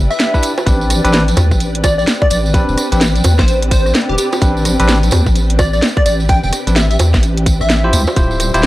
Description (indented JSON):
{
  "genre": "UK garage, two-step garage",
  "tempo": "128 BPM",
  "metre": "4/4",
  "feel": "swing 62% on 16ths",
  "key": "A minor",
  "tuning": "A4 = 438 Hz",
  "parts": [
    { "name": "soft string machine", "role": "sustained chords", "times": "0.0-8.7 s", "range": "F3 to E5", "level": "-26 LUFS", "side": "equal", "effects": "ensemble chorus, sidechain pumping" },
    { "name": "deep soft wobble bass", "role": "bass", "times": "0.0-8.7 s", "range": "D1 to E2", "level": "-14 LUFS", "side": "equal", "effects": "chorus" },
    { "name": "granular cloud pad", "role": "texture", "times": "0.0-8.7 s", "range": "F3 to G5", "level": "-26 LUFS", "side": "left 1 dB", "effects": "built-in reverb, sidechain pumping" },
    { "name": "plucky unison lead", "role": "melody", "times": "0.1-7.9 s", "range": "G4 to G5", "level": "-19 LUFS", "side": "equal", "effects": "tape echo" },
    { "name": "garage drum kit", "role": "drums", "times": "0.1-8.7 s", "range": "bongos, hi-hat, rim click, snare drum", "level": "-17 LUFS", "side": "equal", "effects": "none" },
    { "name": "tambourine", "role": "percussion", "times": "0.1-8.7 s", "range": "none", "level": "-24 LUFS", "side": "right 3 dB", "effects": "none" },
    { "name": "bell-like tine electric piano", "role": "stabs", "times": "0.3-8.7 s", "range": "C4 to C5", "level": "-18 LUFS", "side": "equal", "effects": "tape echo" },
    { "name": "electronic kick drum", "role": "drums", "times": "0.3-8.3 s", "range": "none", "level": "-14 LUFS", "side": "equal", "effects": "overdrive" }
  ],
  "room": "digital ambience",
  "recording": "dry, gritty hardware recording, cassette tape",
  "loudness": "-11 LUFS",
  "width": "side -16 dB against mid",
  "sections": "0.0-8.7 A section",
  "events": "none",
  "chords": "0.0 Em7; 0.7 Am11; 7.9 Dm11"
}